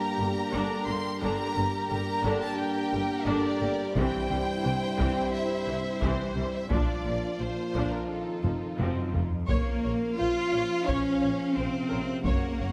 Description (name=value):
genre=cinematic, epic orchestral film score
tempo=87 BPM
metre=4/4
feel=straight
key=G dorian, Bb minor from 9.5 s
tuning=A4 = 438 Hz
part: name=rich symphonic violin section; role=melody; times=0.0-12.7 s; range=A4 to C6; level=-37 LUFS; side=equal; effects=none
part: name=warm symphonic violin section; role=second line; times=0.0-12.7 s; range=D4 to Db5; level=-39 LUFS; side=equal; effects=none
part: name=mellow French horn section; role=sustained chords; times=0.0-12.7 s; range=C3 to F4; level=-37 LUFS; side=equal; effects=none
part: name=mellow trombone section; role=sustained chords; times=0.0-12.7 s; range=G2 to G3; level=-38 LUFS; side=equal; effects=none
part: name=rich symphonic viola section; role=accompaniment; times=0.2-12.7 s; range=D3 to Db5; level=-38 LUFS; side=equal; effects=none
part: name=rich symphonic cello section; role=bass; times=0.2-12.7 s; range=F2 to F4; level=-35 LUFS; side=equal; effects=none
part: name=rich symphonic double bass section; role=bass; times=0.2-12.7 s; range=F1 to C2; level=-38 LUFS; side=equal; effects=none
part: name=taiko ensemble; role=drums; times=4.0-12.7 s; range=none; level=-34 LUFS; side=equal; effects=none
room=moderate scoring stage reverb, RT60 1.6 s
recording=none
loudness=-28 LUFS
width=mono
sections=0.0-9.5 A section; 9.5-12.7 B section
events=drum fill 8.4-9.5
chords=0.0 Gm; 4.0 C; 6.7 Bb; 8.1 F7; 9.5 Bbmadd9